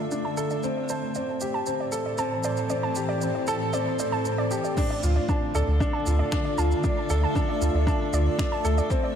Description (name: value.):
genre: piano and strings electronica.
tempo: 116 BPM.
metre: 4/4.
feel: straight.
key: D minor.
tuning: A4 = 440 Hz.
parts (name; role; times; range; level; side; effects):
granular cloud pad; sustained chords; 0.0-9.2 s; A2 to E5; -31 LUFS; left 1 dB; built-in reverb, sidechain pumping.
warm upright piano; riff; 0.0-9.1 s; C4 to D5; -28 LUFS; left 1 dB; digital delay.
warbly dusty pluck; arpeggios; 0.1-9.2 s; D5 to A5; -32 LUFS; right 4 dB; chorus, sidechain pumping, digital delay.
organic electronic drum kit; drums; 0.1-9.0 s; crash cymbal, finger snaps, shaker; -39 LUFS; right 3 dB; none.
electronic kick drum; drums; 4.8-9.0 s; none; -26 LUFS; equal; none.
warm sub bass; bass; 5.0-8.8 s; D2; -22 LUFS; equal; sidechain pumping.
room: moderate lush hall reverb, RT60 1.8 s.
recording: none.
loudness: -23 LUFS.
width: side -8 dB against mid.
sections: 0.0-4.8 A section; 4.8-9.2 B section.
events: build-up 0.0-4.8; filter sweep on synth arpeggio sound 0.0-4.8; drop 4.8-9.2.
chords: 0.0 Dmadd9; 0.6 Am7; 4.8 Dmadd9.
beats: 0.12 | 0.64 1.15 1.67 2.19 | 2.70 3.22 3.74 4.26 | 4.77 5.29 5.81 6.33 | 6.84 7.36 7.88 8.39 | 8.91.